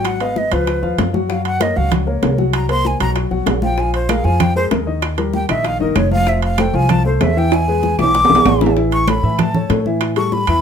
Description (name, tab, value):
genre	Afro-Cuban jazz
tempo	193 BPM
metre	4/4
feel	straight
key	unclear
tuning	A4 = 441 Hz
part	breathy jazz flute	melody	0.0-10.6 s	Bb4 to D6	-19 LUFS	equal	none
part	warm upright piano	accompaniment	0.0-10.6 s	Eb3 to Gb5	-20 LUFS	left 5 dB	none
part	upright bass	bass	0.0-10.6 s	F1 to A2	-19 LUFS	right 1 dB	none
part	bongos	percussion	0.0-10.6 s	none	-24 LUFS	left 7 dB	none
part	congas	percussion	0.1-10.6 s	none	-22 LUFS	right 1 dB	none
part	timbales	percussion	0.1-10.6 s	none	-21 LUFS	right 8 dB	none
part	claves	percussion	4.1-10.6 s	none	-29 LUFS	right 7 dB	none
room	light reverb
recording	close, detailed microphones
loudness	-14 LUFS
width	side -7 dB against mid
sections	0.0-8.8 A section; 8.8-10.6 A section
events	flute solo 0.0-10.6; drum fill 7.5-8.8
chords	0.1 Abm7; 0.7 Db9; 1.3 Gb; 2.5 Ab9; 3.2 B5; 3.8 Bb7sus4; 5.0 Ebadd9; 6.3 Fmaj7; 7.5 E7; 8.8 A; 10.0 A5